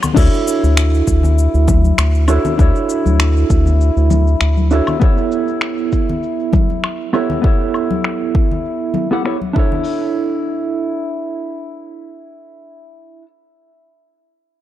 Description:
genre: sunset chillout.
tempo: 99 BPM.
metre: 4/4.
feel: swing 54% on 16ths.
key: D major.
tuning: A4 = 441 Hz.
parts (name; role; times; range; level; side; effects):
deep house drum kit; drums; 0.0-9.7 s; cabasa, crash cymbal, finger snaps, woodblock; -22 LUFS; left 1 dB; overdrive, low-pass filter on perc, low-pass filter on snare, low-pass filter on cymbals.
congas; percussion; 0.0-9.8 s; none; -22 LUFS; left 5 dB; none.
mellow electric guitar; accompaniment; 0.1-13.3 s; B3 to F#5; -18 LUFS; moving between left 1 dB and right 5 dB; auto-pan, analog delay.
round analog bass; bass; 0.2-4.8 s; D2; -13 LUFS; equal; none.
electronic kick drum; drums; 0.2-9.7 s; none; -14 LUFS; equal; overdrive.
room: little or no reverb.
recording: dry, gritty hardware recording.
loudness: -13 LUFS.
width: side -12 dB against mid.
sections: 0.2-9.9 A section; 9.9-12.3 B section.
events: none.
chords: 0.2 Dmaj7; 5.0 A7; 9.6 Dmaj7(no3).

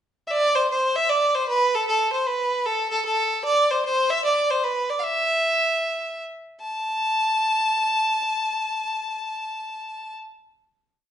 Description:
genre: celtic folk, Celtic hornpipe.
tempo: 152 BPM.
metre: 4/4.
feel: swing 64% on 8ths.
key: A minor.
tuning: A4 = 440 Hz.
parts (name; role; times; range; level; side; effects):
rich fiddle; solo; 0.3-10.1 s; A4 to A5; -21 LUFS; equal; none.
room: wet large studio reverb, RT60 0.8 s.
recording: band playing live in one room, nothing above 11.0 kHz.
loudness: -20 LUFS.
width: side -9 dB against mid.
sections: 0.0-0.3 pickup bar; 0.3-6.6 A section; 6.6-9.8 final note.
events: none.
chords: none.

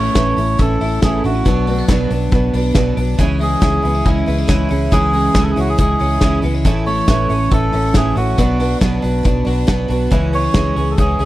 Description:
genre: jangly indie pop.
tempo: 139 BPM.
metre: 4/4.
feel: straight.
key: unclear.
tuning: A4 = 440 Hz.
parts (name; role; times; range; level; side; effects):
melodica; melody; 0.0-11.3 s; E4 to C#5; -20 LUFS; right 1 dB; none.
picked twelve-string acoustic guitar; accompaniment; 0.0-11.3 s; A2 to E4; -22 LUFS; right 4 dB; none.
twelve-string electric guitar; arpeggios; 0.0-11.3 s; E3 to G#4; -21 LUFS; left 2 dB; none.
vintage muted fingered electric bass; bass; 0.0-11.3 s; A1 to C#2; -19 LUFS; equal; none.
loose indie drum kit; drums; 0.1-11.3 s; hi-hat, kick drum, snare drum; -17 LUFS; equal; none.
room: little or no reverb.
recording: none.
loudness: -13 LUFS.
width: side -16 dB against mid.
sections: 0.0-11.3 A section.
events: none.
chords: 0.0 A; 1.5 Bm; 3.2 C#m; 6.6 A; 8.4 Bm; 10.1 C#m.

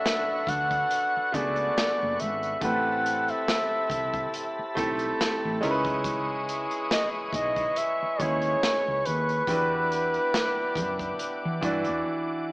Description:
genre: R&B, neo-soul.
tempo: 70 BPM.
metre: 4/4.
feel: swing 55% on 16ths.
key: unclear.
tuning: A4 = 439 Hz.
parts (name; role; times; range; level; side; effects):
warm flugelhorn; melody; 0.0-12.5 s; B4 to F#5; -26 LUFS; equal; none.
clear baby grand piano; accompaniment; 0.0-12.5 s; E3 to D5; -31 LUFS; right 1 dB; none.
tonewheel organ; sustained chords; 0.0-12.5 s; E4 to D#6; -35 LUFS; equal; chorus vibrato.
mellow horn section; stabs; 0.0-12.4 s; G#3 to A4; -36 LUFS; left 1 dB; none.
crunchy breakbeat drum kit; drums; 0.1-12.0 s; hi-hat, kick drum, snare drum; -32 LUFS; equal; none.
woody fretless electric bass; bass; 0.5-12.0 s; F#1 to E3; -34 LUFS; equal; none.
room: light reverb.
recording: small speaker sound.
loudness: -24 LUFS.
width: side -23 dB against mid.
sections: 0.0-12.5 A section.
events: break 12.0-12.5.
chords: 0.0 Bm9; 2.6 Am9; 5.6 C#m9; 9.5 Em9.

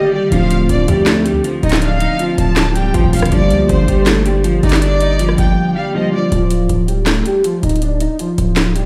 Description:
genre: hip hop, trap.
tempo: 160 BPM.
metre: 4/4.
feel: half-time.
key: D phrygian.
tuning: A4 = 439 Hz.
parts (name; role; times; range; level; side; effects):
electric guitar at the edge of break-up; melody; 0.0-8.9 s; F3 to Eb5; -20 LUFS; equal; analog chorus, low-pass filter, digital delay.
warm symphonic violin section; second line; 0.0-6.3 s; C5 to A5; -24 LUFS; equal; digital delay.
mellow tine electric piano; accompaniment; 0.0-6.3 s; D3 to G4; -21 LUFS; equal; phaser, low-pass filter.
distorted 808-style bass; bass; 0.3-8.9 s; D1 to D2; -18 LUFS; equal; distortion.
trap drum kit; drums; 0.3-8.8 s; handclaps, hi-hat, rim click, snare drum; -21 LUFS; equal; none.
room: light reverb.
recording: played on a big sound system in a bare room, large studio reverb.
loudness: -14 LUFS.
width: mono.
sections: 0.0-6.3 A section; 6.3-8.9 B section.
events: break 0.0-0.3, 5.6-6.3.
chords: 0.3 Dm7; 3.3 Gm; 6.3 Dm.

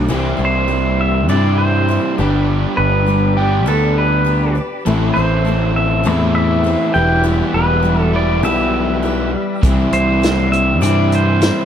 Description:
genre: folk rock and heartland rock.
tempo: 101 BPM.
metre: 4/4.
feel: straight.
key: unclear.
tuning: A4 = 440 Hz.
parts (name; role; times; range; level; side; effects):
picked steel-string acoustic guitar; accompaniment; 0.0-11.7 s; A2 to C5; -21 LUFS; left 4 dB; none.
tonewheel organ; sustained chords; 0.0-11.7 s; G4 to E6; -31 LUFS; right 1 dB; none.
raw garage guitar; riff; 0.0-11.7 s; E2 to G4; -19 LUFS; right 1 dB; overdrive.
picked electric bass; bass; 0.0-11.5 s; E1 to G2; -17 LUFS; equal; none.
pedal steel guitar; melody; 0.4-11.7 s; G4 to G5; -19 LUFS; right 1 dB; digital delay.
vintage drum kit; drums; 9.6-11.6 s; hi-hat, kick drum, snare drum; -18 LUFS; equal; none.
room: moderate large studio reverb, RT60 1.2 s.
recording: dark, warm production.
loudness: -13 LUFS.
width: side -9 dB against mid.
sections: 0.1-11.7 A section.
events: none.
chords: 0.1 C; 2.2 G; 4.9 Am; 7.0 Em; 9.6 C.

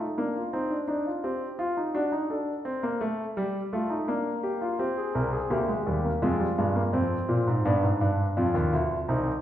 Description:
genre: classical, baroque-style 4-part fugue for grand piano.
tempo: 84 BPM.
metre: 4/4.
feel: straight.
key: unclear.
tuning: A4 = 440 Hz.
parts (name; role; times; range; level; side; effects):
warm concert grand piano; solo; 0.0-9.3 s; C2 to Bb4; -25 LUFS; equal; none.
room: wet recital hall reverb, RT60 1.4 s.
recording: recorded in a church or concert hall.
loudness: -25 LUFS.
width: side -11 dB against mid.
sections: 0.0-9.4 A section.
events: none.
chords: 0.0 Gm (rootless); 0.5 Cmadd9; 2.0 D; 3.4 Gm; 4.8 Cm; 6.2 Fmadd9; 7.7 G.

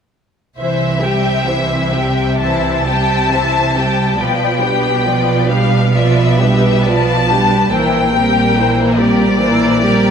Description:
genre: classical, slow romantic movement for string orchestra.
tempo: 62-72 BPM.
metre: 4/4.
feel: rubato.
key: C major.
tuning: A4 = 440 Hz.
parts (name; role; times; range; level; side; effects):
rich chamber violin section; melody; 0.6-10.1 s; D5 to A5; -17 LUFS; left 4 dB; none.
rich studio violin section; second line; 0.6-10.1 s; G4 to G5; -19 LUFS; left 1 dB; none.
rich chamber viola section; accompaniment; 0.6-10.1 s; E3 to F4; -18 LUFS; right 2 dB; none.
clear chamber double bass section; bass; 0.6-10.1 s; Bb1 to C2; -18 LUFS; right 3 dB; none.
clear studio cello section; bass; 0.6-10.1 s; Bb2 to C3; -20 LUFS; equal; none.
room: wet scoring stage reverb, RT60 1.8 s.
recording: minimal, uncompressed stereo recording.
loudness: -12 LUFS.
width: side -7 dB against mid.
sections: 0.6-10.1 A section.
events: none.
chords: 0.6 C; 4.2 G7/B; 7.7 C7/Bb.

